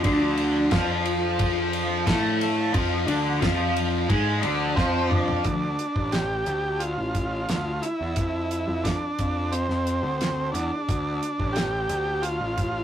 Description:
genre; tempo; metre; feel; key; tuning
psychedelic rock; 88 BPM; 4/4; straight; D minor; A4 = 440 Hz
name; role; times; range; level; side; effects
soft string machine; sustained chords; 0.0-5.4 s; F3 to F4; -37 LUFS; equal; phaser, ensemble chorus
thick fuzz guitar; riff; 0.0-5.4 s; D3 to A4; -24 LUFS; left 1 dB; distortion, phaser
fuzz picked electric bass; bass; 0.0-12.8 s; A1 to A2; -28 LUFS; equal; overdrive
damped 70s drum kit; drums; 0.0-12.7 s; hi-hat, kick drum, ride cymbal, snare drum, toms; -27 LUFS; equal; none
combo organ; melody; 4.8-12.8 s; C4 to G4; -27 LUFS; right 1 dB; none
room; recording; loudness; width
wet booth ambience, RT60 0.3 s; rough rehearsal-room recording, warm saturation; -22 LUFS; side -10 dB against mid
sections
0.0-5.5 A section; 5.5-12.8 B section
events
drum fill 4.8-5.5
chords
0.0 Dm; 8.2 F5; 10.9 Dm

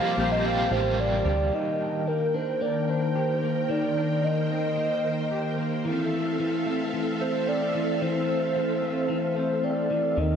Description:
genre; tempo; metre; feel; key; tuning
dream pop; 111 BPM; 4/4; straight; F mixolydian; A4 = 439 Hz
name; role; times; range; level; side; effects
warbly nostalgic lead; melody; 0.0-10.4 s; Bb4 to F5; -28 LUFS; right 1 dB; chorus, tremolo, digital delay
overdriven semi-hollow guitar; accompaniment; 0.0-2.1 s; C3 to G4; -31 LUFS; right 5 dB; tremolo, lush chorus
string machine, violas; sustained chords; 0.0-10.4 s; Eb3 to A5; -29 LUFS; equal; ensemble chorus
electric guitar at the edge of break-up; arpeggios; 0.0-10.4 s; Eb3 to G4; -29 LUFS; left 2 dB; lush chorus, digital delay
shimmering bell with halo; texture; 0.0-1.5 s; D6 to C7; -39 LUFS; left 2 dB; ensemble chorus, digital delay
chorused synth bass; bass; 0.2-1.5, 10.2-10.4 s; A1 to Eb2; -28 LUFS; equal; none
room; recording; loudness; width
wet concert hall reverb, RT60 2.0 s; nothing above 10.7 kHz; -24 LUFS; side -7 dB against mid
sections
0.0-1.5 A section; 1.5-10.4 B section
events
none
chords
0.0 C7sus4; 1.5 Ebmaj7; 5.8 Fmaj7

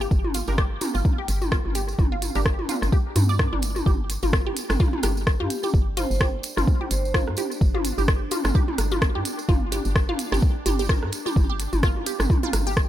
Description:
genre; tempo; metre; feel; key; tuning
minimal techno; 128 BPM; 4/4; swing 57% on 16ths; unclear; A4 = 442 Hz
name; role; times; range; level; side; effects
resonant blip pluck; riff; 0.0-12.7 s; D4 to D5; -31 LUFS; right 1 dB; phaser, sidechain pumping, analog delay
hollow knocking FM bass; bass; 0.0-12.9 s; G1 to G2; -26 LUFS; equal; sidechain pumping
tambourine; percussion; 0.0-12.9 s; none; -36 LUFS; right 4 dB; none
electronic kick drum; drums; 0.1-12.9 s; none; -21 LUFS; equal; none
minimal click drum kit; percussion; 0.2-12.6 s; rim click, toms; -29 LUFS; equal; overdrive, analog delay
minimal click drum kit; drums; 0.3-12.9 s; hi-hat, rim click; -29 LUFS; equal; dub echo
filtered dub chord stab; stabs; 0.5-2.4 s; D4 to Bb4; -37 LUFS; right 5 dB; none
swarming drone; texture; 6.4-12.9 s; D4; -38 LUFS; left 2 dB; built-in reverb, sidechain pumping
vibraphone with medium hard mallets; melody; 5.4-7.1 s; G4 to C5; -34 LUFS; right 1 dB; dub echo
room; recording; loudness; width
little or no reverb; echo-heavy mix; -20 LUFS; side -12 dB against mid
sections
0.0-3.9 A section; 3.9-12.9 B section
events
drop 3.9-12.9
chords
0.0 N.C.; 3.9 G5

